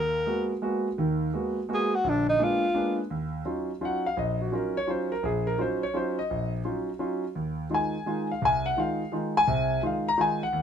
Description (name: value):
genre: jazz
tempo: 170 BPM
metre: 3/4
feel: swing 64% on 8ths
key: G# dorian, Eb dorian from 3.1 s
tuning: A4 = 440 Hz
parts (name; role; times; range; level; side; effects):
- breathy tenor saxophone; melody; 0.0-3.0 s; D4 to A#4; -25 LUFS; equal; none
- warm concert grand piano; accompaniment; 0.0-10.6 s; A#1 to Bb5; -26 LUFS; equal; none
room: light reverb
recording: minimal, uncompressed stereo recording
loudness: -25 LUFS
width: side -8 dB against mid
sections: 0.0-3.1 A section; 3.1-10.6 A section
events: tenor saxophone solo 0.0-3.1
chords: 0.0 G#m9; 2.0 A#7b9; 3.1 Ebm9; 7.3 Fm7